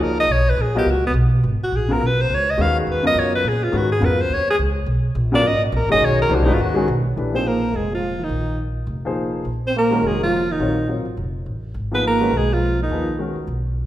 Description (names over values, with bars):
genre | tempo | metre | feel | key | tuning
modal jazz | 209 BPM | 4/4 | swing 59% on 8ths | G# dorian, Bb phrygian from 7.2 s | A4 = 440 Hz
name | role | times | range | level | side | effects
breathy alto saxophone | melody | 0.0-13.2 s | B3 to E#5 | -20 LUFS | equal | none
warm grand piano | accompaniment | 0.0-13.3 s | C#3 to D#5 | -24 LUFS | left 2 dB | none
upright bass | bass | 0.0-13.9 s | F1 to A#2 | -22 LUFS | equal | none
mellow trombone | second line | 7.3-13.2 s | Eb3 to C4 | -24 LUFS | right 3 dB | none
room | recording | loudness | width
wet recital hall reverb, RT60 1.8 s | recorded in a church or concert hall | -17 LUFS | side -13 dB against mid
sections
0.0-7.2 A section; 7.2-13.9 B section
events
alto saxophone solo 0.0-7.2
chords
0.0 G#m9; 7.2 Bbm11; 11.8 Abmadd9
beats
0.00 | 0.29 0.58 0.86 1.15 | 1.44 1.72 2.01 2.30 | 2.58 2.87 3.16 3.44 | 3.73 4.02 4.30 4.59 | 4.87 5.16 5.45 5.73 | 6.02 6.30 6.59 6.88 | 7.16 7.45 7.74 8.02 | 8.31 8.60 8.88 9.17 | 9.46 9.74 10.03 10.32 | 10.60 10.89 11.18 11.46 | 11.75 12.04 12.33 12.61 | 12.90 13.19 13.47 13.76